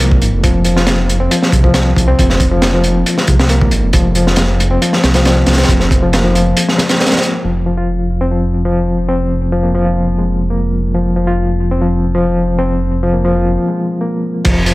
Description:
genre	breakbeat, breaks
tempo	137 BPM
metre	4/4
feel	straight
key	unclear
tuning	A4 = 440 Hz
part	overdriven reed electric piano	riff	0.0-14.7 s	F3 to F4	-15 LUFS	left 1 dB	fast tremolo, low-pass filter, tape echo
part	dark detuned saw bass	bass	0.0-14.7 s	F1 to C2	-15 LUFS	equal	tube saturation
part	crunchy breakbeat drum kit	drums	0.0-7.3, 14.4-14.7 s	crash cymbal, hi-hat, kick drum, snare drum	-13 LUFS	equal	none
room	studio ambience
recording	none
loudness	-11 LUFS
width	side -19 dB against mid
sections	0.0-7.4 A section; 7.4-14.4 B section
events	break 13.6-14.4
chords	0.0 Fm

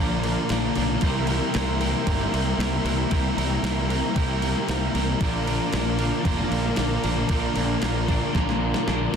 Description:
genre	rock, shoegaze and dream pop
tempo	115 BPM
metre	4/4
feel	straight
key	unclear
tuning	A4 = 440 Hz
part	brassy analog pad	sustained chords	0.0-9.2 s	Bb4 to D6	-36 LUFS	left 1 dB	chorus
part	direct-recorded clean electric guitar	arpeggios	0.0-9.2 s	E3 to G4	-34 LUFS	right 11 dB	lush chorus, slapback echo
part	biting overdriven guitar	riff	0.0-9.2 s	Bb2 to Bb4	-28 LUFS	right 11 dB	reverse reverb
part	overdriven electric guitar	riff	0.0-9.2 s	Bb2 to Bb4	-27 LUFS	left 13 dB	analog chorus
part	fuzz picked electric bass	bass	0.0-9.2 s	F1 to C2	-27 LUFS	equal	overdrive
part	clean 12-bit digital drum machine	drums	0.2-9.2 s	crash cymbal, kick drum, snare drum	-28 LUFS	equal	none
room	little or no reverb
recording	dense, heavily limited modern master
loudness	-21 LUFS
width	side -7 dB against mid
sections	0.0-9.2 A section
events	drum fill 8.3-9.2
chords	0.0 Bbmaj7; 1.0 C7; 5.2 Bbmaj7

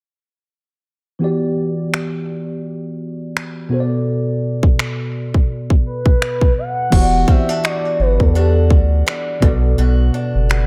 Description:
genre	contemporary R&B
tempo	84 BPM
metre	4/4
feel	swing 58% on 16ths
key	E minor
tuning	A4 = 439 Hz
part	tine electric piano	accompaniment	1.2-10.7 s	B2 to D5	-24 LUFS	equal	lush chorus
part	trap drum kit	drums	1.9-10.7 s	crash cymbal, finger snaps, kick drum	-17 LUFS	equal	none
part	gliding portamento lead	melody	5.9-8.9 s	A4 to F#5	-22 LUFS	equal	chorus, delay
part	picked acoustic archtop guitar	arpeggios	6.9-10.7 s	B2 to F#4	-27 LUFS	equal	delay
part	saturated sub bass	bass	6.9-10.7 s	E1 to E2	-17 LUFS	equal	none
room	light reverb, digital ambience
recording	none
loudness	-17 LUFS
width	mono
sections	1.2-6.9 A section; 6.9-10.7 B section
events	hi-hats muted 6.9-10.7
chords	1.2 Em9; 3.7 Bm7; 6.9 Em9; 9.4 Bm7

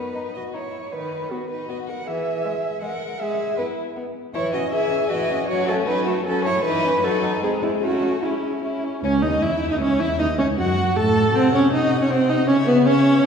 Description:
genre	quick classical-period movement for string quartet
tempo	156 BPM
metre	3/4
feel	straight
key	C# minor from 4.3 s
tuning	A4 = 440 Hz
part	rich violin	melody	0.0-13.2 s	G#3 to Gb5	-29 LUFS	left 7 dB	none
part	rich viola	accompaniment	0.0-13.3 s	D#3 to A4	-22 LUFS	right 1 dB	none
part	warm cello	bass	0.0-13.2 s	C#2 to F#5	-24 LUFS	right 2 dB	none
part	rich violin	second line	0.1-13.3 s	G#3 to A5	-28 LUFS	left 3 dB	none
room	wet concert hall reverb, RT60 2.4 s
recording	heard from further back in the room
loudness	-19 LUFS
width	side -7 dB against mid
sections	0.0-9.0 A section; 9.0-13.3 B section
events	none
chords	0.0 B; 0.9 B/D#; 2.1 E; 3.2 E/G#; 4.3 C#m/E; 5.5 F#m; 6.7 C#m/E; 7.0 D#dim/F#; 7.4 G#; 7.8 C#m; 10.2 D#m7b5; 11.4 Cdim; 12.5 C#m

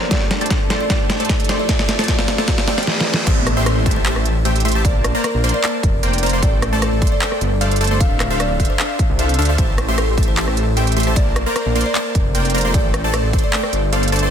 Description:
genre	future bass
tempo	152 BPM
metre	4/4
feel	half-time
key	unclear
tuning	A4 = 438 Hz
part	buzzing kalimba	melody	0.0-14.2 s	A4 to F5	-25 LUFS	equal	sidechain pumping, ping-pong delay
part	glassy digital keys	accompaniment	0.0-3.3 s	A3 to D5	-29 LUFS	left 3 dB	none
part	shimmering ambient pad	sustained chords	0.0-3.2 s	A2 to A4	-33 LUFS	right 2 dB	none
part	supersaw stab	riff	0.0-14.3 s	A3 to C6	-22 LUFS	equal	sidechain pumping, low-pass filter
part	riser and downlifter	sound effects	0.0-6.4 s	none	-28 LUFS	left 1 dB	none
part	dubstep drum kit	drums	0.1-14.3 s	crash cymbal, handclaps, hi-hat, rim click, snare drum	-22 LUFS	right 1 dB	none
part	electronic kick drum	drums	0.1-13.4 s	none	-18 LUFS	equal	none
part	wide detuned saw bass	bass	3.3-14.3 s	D1 to D2	-19 LUFS	equal	chorus, sidechain pumping
room	digital ambience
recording	dense, heavily limited modern master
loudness	-15 LUFS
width	side -8 dB against mid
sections	0.0-3.3 A section; 3.3-14.3 B section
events	build-up 0.0-3.3; drum fill 0.0-2.9, 2.9-3.3; riser 0.0-3.3; drop 3.3-14.3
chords	0.1 F6/A; 1.7 Dm7; 3.3 Am7; 4.8 Bbmaj7; 6.4 F6/A (rootless); 8.0 Dm7; 9.6 Am7; 11.2 Bbmaj7; 12.7 F6/A (rootless)

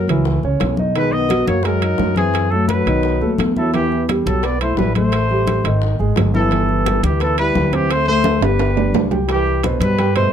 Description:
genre	Afro-Cuban jazz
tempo	173 BPM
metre	4/4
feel	straight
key	G major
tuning	A4 = 440 Hz
part	warm trumpet	melody	0.0-10.3 s	G4 to D#5	-21 LUFS	right 1 dB	none
part	breathy trombone	second line	0.0-10.3 s	E3 to B3	-24 LUFS	left 6 dB	none
part	warm grand piano	accompaniment	0.0-10.3 s	B2 to G5	-21 LUFS	right 1 dB	none
part	upright bass	bass	0.0-10.3 s	G1 to G2	-19 LUFS	equal	none
part	timbales	percussion	0.1-10.3 s	none	-24 LUFS	right 11 dB	none
part	bongos	percussion	0.3-10.2 s	none	-29 LUFS	left 6 dB	none
part	congas	percussion	0.3-10.3 s	none	-24 LUFS	left 3 dB	none
room	light reverb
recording	dark, warm production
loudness	-15 LUFS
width	side -8 dB against mid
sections	0.0-9.3 A section; 9.3-10.3 B section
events	drum fill 8.3-9.3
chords	0.0 F#6; 1.0 B6; 2.3 F#dim; 3.0 B7; 3.7 Em; 5.1 Am7; 5.8 Ab5; 6.5 G69; 7.9 D5; 8.6 G; 9.3 Cmaj7

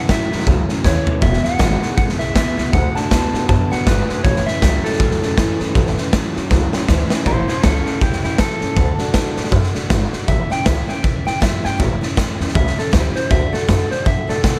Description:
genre	rockabilly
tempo	159 BPM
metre	4/4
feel	swing 60% on 8ths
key	A mixolydian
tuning	A4 = 440 Hz
part	picked steel-string acoustic guitar	accompaniment	0.0-14.6 s	E2 to F#4	-28 LUFS	equal	none
part	electric guitar through a small old amp	riff	0.0-7.2 s	E2 to B3	-26 LUFS	equal	none
part	electric guitar through a small old amp	melody	0.1-14.6 s	C#4 to A5	-26 LUFS	equal	tape echo
part	upright bass	bass	0.1-14.6 s	E1 to B2	-23 LUFS	equal	none
part	raw garage drum kit	drums	0.1-14.5 s	hi-hat, kick drum, snare drum, toms	-20 LUFS	equal	none
room	little or no reverb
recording	none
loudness	-17 LUFS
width	mono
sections	0.0-7.3 A section; 7.3-14.6 B section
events	drum fill 0.8-1.2, 6.5-7.3; clean electric guitar solo 7.3-14.6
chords	0.0 A; 1.2 E; 2.7 D; 4.2 A; 8.8 D; 10.3 A; 13.3 D

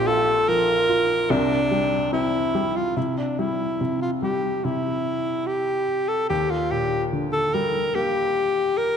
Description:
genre	pop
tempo	72 BPM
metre	4/4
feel	straight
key	unclear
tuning	A4 = 440 Hz
part	breathy alto saxophone	melody	0.0-9.0 s	D4 to Bb4	-22 LUFS	equal	none
part	felt-muted upright piano	accompaniment	0.0-9.0 s	Bb1 to F4	-26 LUFS	left 1 dB	none
room	moderate concert hall reverb, RT60 1.9 s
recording	dark, warm production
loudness	-20 LUFS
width	side -7 dB against mid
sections	0.0-3.0 A section; 3.0-9.0 B section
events	none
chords	0.0 Bb5; 1.3 Csus2; 6.3 Ebmaj7

